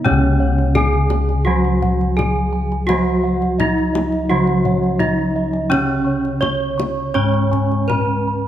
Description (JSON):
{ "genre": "Javanese gamelan", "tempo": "85 BPM", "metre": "4/4", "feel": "straight", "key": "C# slendro", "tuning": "A4 = 436 Hz", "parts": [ { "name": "gamelan-type bronze metallophone", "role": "melody", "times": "0.0-8.5 s", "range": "C#4 to C#5", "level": "-20 LUFS", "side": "right 2 dB", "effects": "none" }, { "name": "gamelan-type bronze metallophone", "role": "accompaniment", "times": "0.0-8.5 s", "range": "C#3 to C#4", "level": "-21 LUFS", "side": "right 2 dB", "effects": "none" }, { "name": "gamelan-type bossed gongs", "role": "bass", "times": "0.0-8.5 s", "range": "C#2 to F#4", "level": "-20 LUFS", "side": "left 2 dB", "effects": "none" }, { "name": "gamelan-type bossed gongs", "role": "arpeggios", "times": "0.1-8.3 s", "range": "C#5 to C#6", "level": "-29 LUFS", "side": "left 3 dB", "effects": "none" }, { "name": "gamelan-type bronze metallophone", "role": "arpeggios", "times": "0.1-8.5 s", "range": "C#5 to C#6", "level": "-27 LUFS", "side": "right 5 dB", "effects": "none" }, { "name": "kendang", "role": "percussion", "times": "0.1-8.1 s", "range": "none", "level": "-27 LUFS", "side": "left 5 dB", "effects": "none" } ], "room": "light reverb", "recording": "close, detailed microphones", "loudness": "-15 LUFS", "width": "side -11 dB against mid", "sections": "0.1-8.5 A section", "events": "none", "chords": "none" }